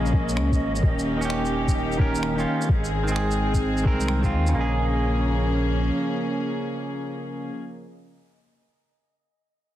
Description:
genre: future garage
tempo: 129 BPM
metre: 4/4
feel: swing 65% on 16ths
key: Bb dorian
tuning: A4 = 441 Hz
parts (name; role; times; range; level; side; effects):
- clean electric guitar; accompaniment; 0.0-7.6 s; Db3 to Bb4; -29 LUFS; right 4 dB; sidechain pumping, tape echo
- rich chamber string section; sustained chords; 0.0-7.6 s; Eb3 to Ab4; -26 LUFS; left 1 dB; sidechain pumping
- warm sub bass; bass; 0.0-5.9 s; Eb1 to Eb2; -26 LUFS; equal; tube saturation, sidechain pumping
- wind-like tuned noise texture; texture; 0.0-4.6 s; Eb5; -37 LUFS; right 1 dB; built-in reverb
- electronic kick drum; drums; 0.1-4.3 s; none; -22 LUFS; equal; none
- electronic shaker and finger snaps; drums; 0.1-4.5 s; none; -36 LUFS; right 1 dB; none
room: light reverb, digital ambience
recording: heavily compressed radio sound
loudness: -21 LUFS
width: side -13 dB against mid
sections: 0.0-4.5 A section; 4.5-8.3 B section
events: none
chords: 0.0 Bbm7; 0.8 Eb7; 2.7 Ab; 4.5 Bbm7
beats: 0.36 | 0.83 1.29 1.76 2.22 | 2.69 3.15 3.62 4.08 | 4.55 5.01 5.48 5.94 | 6.41 6.87 7.34

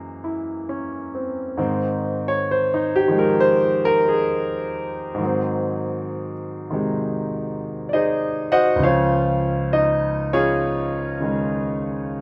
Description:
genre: solo jazz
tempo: 66 BPM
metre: 4/4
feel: swing 67% on 8ths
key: unclear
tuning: A4 = 436 Hz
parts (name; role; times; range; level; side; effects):
- clear concert grand piano; solo; 0.0-12.2 s; Db2 to Gb5; -22 LUFS; equal; none
room: moderate large studio reverb, RT60 1.0 s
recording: band playing live in one room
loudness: -22 LUFS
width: mono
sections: 0.0-12.2 A section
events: grand piano solo 0.0-12.2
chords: 0.0 Gb9; 1.6 Ab; 5.2 Ab7; 8.8 Dbmaj7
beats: 0.69 | 1.59 2.49 3.39 4.29 | 5.20 6.10 7.00 7.90 | 8.80 9.71 10.61 11.51

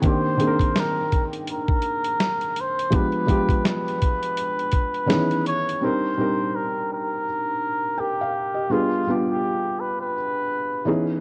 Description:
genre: lo-fi hip hop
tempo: 83 BPM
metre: 4/4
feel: swing 59% on 16ths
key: C minor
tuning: A4 = 440 Hz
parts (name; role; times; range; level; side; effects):
- felt-muted upright piano; accompaniment; 0.0-11.2 s; Eb3 to G5; -27 LUFS; equal; low-pass filter, cassette tape
- dusty soul sampler-style drum kit; drums; 0.0-5.8 s; hi-hat, kick drum, snare drum; -26 LUFS; equal; cassette tape
- trumpet with cup mute; melody; 0.1-10.9 s; F4 to Db5; -28 LUFS; equal; low-pass filter, cassette tape
room: light reverb, studio reverb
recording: home recording on cassette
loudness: -23 LUFS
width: mono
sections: 0.0-5.8 A section; 5.8-11.2 B section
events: none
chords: 0.0 Cm7; 2.9 G7b9; 5.1 Dbm7; 5.8 Cm7; 8.7 G7b9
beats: | 0.04 0.76 1.48 2.20 | 2.93 3.65 4.37 5.10 | 5.82 6.54 7.26 7.99 | 8.71 9.43 10.16 10.88

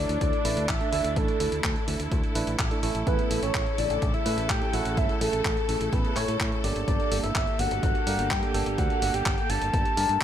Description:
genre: italo disco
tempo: 126 BPM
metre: 4/4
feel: straight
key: unclear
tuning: A4 = 440 Hz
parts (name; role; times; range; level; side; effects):
- soft octave-layered synth lead; melody; 0.0-10.2 s; A4 to Bb5; -29 LUFS; equal; chorus, phaser, digital delay
- rich symphonic string section; sustained chords; 0.0-10.2 s; C#3 to A4; -35 LUFS; left 2 dB; none
- tine electric piano; stabs; 0.0-10.2 s; C#3 to D5; -33 LUFS; right 5 dB; none
- fingered electric bass; bass; 0.0-10.2 s; G1 to A2; -31 LUFS; equal; tube saturation
- clean 12-bit digital drum machine; drums; 0.1-10.2 s; handclaps, hi-hat; -32 LUFS; equal; none
- electronic kick drum; drums; 0.2-10.2 s; none; -29 LUFS; equal; none
room: light reverb, digital ambience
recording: none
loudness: -24 LUFS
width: side -10 dB against mid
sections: 0.0-10.2 A section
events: none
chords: 0.0 Dsus2; 3.1 A; 6.9 Gmadd9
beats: 0.21 0.69 | 1.16 1.64 2.12 2.59 | 3.07 3.54 4.02 4.50 | 4.97 5.45 5.93 6.40 | 6.88 7.35 7.83 8.31 | 8.78 9.26 9.73 10.21

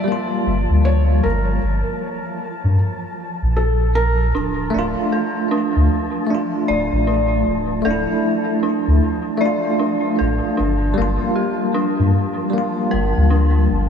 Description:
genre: trip hop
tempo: 77 BPM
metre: 4/4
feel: swing 60% on 16ths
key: unclear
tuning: A4 = 440 Hz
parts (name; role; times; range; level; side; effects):
- felt-muted upright piano; melody; 0.0-4.3 s; A4 to D5; -26 LUFS; equal; dub echo
- bell-like tine electric piano; accompaniment; 0.0-13.9 s; G3 to F4; -20 LUFS; equal; medium stereo tremolo, tape echo
- flickering grainy texture; texture; 0.0-13.9 s; F3 to A5; -29 LUFS; equal; built-in reverb, lush chorus
- soft dub sub bass; bass; 0.5-13.9 s; D1 to G2; -17 LUFS; equal; none
- dark detuned synth bell; arpeggios; 4.3-13.9 s; D4 to D5; -23 LUFS; right 1 dB; chorus, tremolo, dub echo
room: moderate huge ambient reverb, RT60 4.1 s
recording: dreamy mix soaked in reverb, small room reverb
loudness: -16 LUFS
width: side -7 dB against mid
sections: 0.0-13.9 A section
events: none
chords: 0.0 Gm7; 4.3 Dm; 10.6 Gm7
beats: 0.45 | 1.23 2.01 2.79 3.56 | 4.34 5.12 5.90 6.68 | 7.46 8.24 9.02 9.80 | 10.58 11.36 12.14 12.92 | 13.70

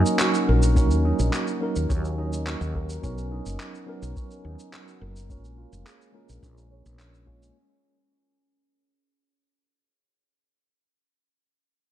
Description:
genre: sunset chillout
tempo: 106 BPM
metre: 4/4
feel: straight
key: Eb minor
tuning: A4 = 442 Hz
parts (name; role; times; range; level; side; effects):
- tine electric piano; accompaniment; 0.0-7.6 s; Gb3 to Db5; -29 LUFS; right 3 dB; auto-pan, low-pass filter, tape echo
- concert harp; arpeggios; 0.0-9.9 s; Db4 to Ab5; -31 LUFS; right 2 dB; low-pass filter, tape echo
- electronic cabasa and handclaps; drums; 0.1-7.5 s; none; -30 LUFS; equal; none
- woody fretless electric bass; bass; 0.5-7.5 s; F1 to Eb2; -24 LUFS; equal; none
- electronic kick drum; drums; 0.8-7.4 s; none; -25 LUFS; equal; none
room: light reverb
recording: dark, warm production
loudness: -22 LUFS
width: side -12 dB against mid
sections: 0.0-7.6 A section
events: fade-out 0.0-7.6; filter sweep on fretless electric bass 0.0-7.6; filter sweep on tine electric piano 0.0-7.6; filter sweep on harp 0.0-7.6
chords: 0.0 Ebm7; 3.0 Bmaj9; 5.3 Bbm7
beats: 0.20 | 0.76 1.33 1.89 2.46 | 3.02 3.59 4.16 4.72 | 5.29 5.86 6.42 6.99

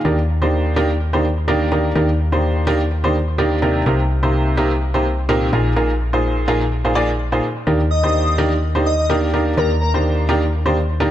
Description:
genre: house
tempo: 126 BPM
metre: 4/4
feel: swing 55% on 16ths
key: Eb major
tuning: A4 = 440 Hz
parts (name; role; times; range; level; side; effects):
- clear upright piano; riff; 0.0-11.1 s; Bb2 to D5; -18 LUFS; right 1 dB; none
- solid FM bass; bass; 0.0-11.1 s; Bb1 to Eb2; -19 LUFS; equal; tube saturation
- airy dreamy lead; melody; 7.9-10.0 s; Bb4 to Eb5; -22 LUFS; left 1 dB; chorus, tape echo
room: light reverb, small room ambience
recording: none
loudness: -15 LUFS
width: side -12 dB against mid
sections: 0.0-11.1 A section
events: none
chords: 0.1 Ebmaj7; 3.9 Cm7; 5.5 Bb7sus4; 7.7 Ebmaj7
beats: | 0.05 0.53 1.00 1.48 | 1.96 2.43 2.91 3.38 | 3.86 4.34 4.81 5.29 | 5.76 6.24 6.72 7.19 | 7.67 8.14 8.62 9.10 | 9.57 10.05 10.53 11.00

